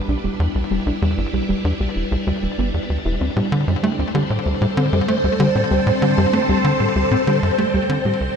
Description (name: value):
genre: ambient, sequencer-driven space music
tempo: 96 BPM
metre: 4/4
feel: straight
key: unclear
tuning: A4 = 440 Hz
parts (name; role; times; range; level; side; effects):
- phased string machine; sustained chords; 0.0-8.4 s; G3 to C5; -21 LUFS; equal; ensemble chorus, phaser
- soft round pluck; arpeggios; 0.1-8.2 s; G3 to E4; -23 LUFS; moving between left 3 dB and right 5 dB; chorus, auto-pan, ping-pong delay
- tight sequencer bass; riff; 0.1-8.3 s; E1 to A3; -20 LUFS; equal; ping-pong delay
room: wet concert hall reverb, RT60 2.0 s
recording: none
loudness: -17 LUFS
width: side -6 dB against mid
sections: 0.0-8.4 A section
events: fade-in on string machine 0.0-8.4; filter sweep on synth arpeggio sound 0.0-8.4; fade-out 6.5-8.4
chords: 0.0 Em7; 3.2 D7sus4